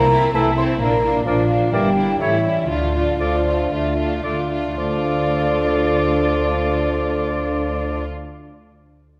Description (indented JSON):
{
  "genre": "cinematic, playful, whimsical film cue",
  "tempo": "111-132 BPM",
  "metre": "4/4",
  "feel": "straight",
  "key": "D minor",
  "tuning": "A4 = 440 Hz",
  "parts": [
    { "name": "warm chamber violin section", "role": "melody", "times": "0.0-8.0 s", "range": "D4 to F4", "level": "-28 LUFS", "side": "equal", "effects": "none" },
    { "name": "mellow hollow silver concert flute", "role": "second line", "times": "0.0-8.0 s", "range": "D5 to C6", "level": "-26 LUFS", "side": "equal", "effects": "none" },
    { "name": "warm chamber violin section", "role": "second line", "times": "0.0-8.0 s", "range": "G3 to D4", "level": "-32 LUFS", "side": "equal", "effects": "none" },
    { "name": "dark symphonic viola section", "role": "accompaniment", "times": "0.0-8.0 s", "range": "A3 to F4", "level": "-32 LUFS", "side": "equal", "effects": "none" },
    { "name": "mellow French horn section", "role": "sustained chords", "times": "0.0-8.0 s", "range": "D4 to C5", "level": "-27 LUFS", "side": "equal", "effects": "none" },
    { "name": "concert harp", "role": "arpeggios", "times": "0.0-8.7 s", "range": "G2 to F5", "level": "-34 LUFS", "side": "equal", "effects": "none" },
    { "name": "dark chamber cello section", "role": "bass", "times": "0.0-8.0 s", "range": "D3 to C4", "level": "-31 LUFS", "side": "equal", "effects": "none" },
    { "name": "dark symphonic double bass section", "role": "bass", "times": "0.0-8.0 s", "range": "G1 to D2", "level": "-27 LUFS", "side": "equal", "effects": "none" },
    { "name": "mellow clarinet", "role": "second line", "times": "0.3-8.0 s", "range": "A4 to Bb4", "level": "-31 LUFS", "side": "equal", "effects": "none" },
    { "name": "mellow bassoon", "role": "accompaniment", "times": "0.3-8.0 s", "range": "E3 to D4", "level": "-30 LUFS", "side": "equal", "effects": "none" },
    { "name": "clear oboe", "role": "second line", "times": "0.4-8.0 s", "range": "C#5 to E5", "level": "-31 LUFS", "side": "equal", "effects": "none" }
  ],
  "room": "wet scoring stage reverb, RT60 1.9 s",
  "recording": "none",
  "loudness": "-19 LUFS",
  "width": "mono",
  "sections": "0.0-4.8 A section; 4.8-9.1 B section",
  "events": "slowing down 0.0-4.8",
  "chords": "0.0 Am/C; 0.8 Bb; 1.7 Em7b5/G; 2.2 A7; 2.7 Dm",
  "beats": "0.34 | 0.80 1.26 1.73 2.20 | 2.69 3.20 3.71 4.24 | 4.77 5.31 5.85 6.39 | 6.93 7.47 8.01 8.55"
}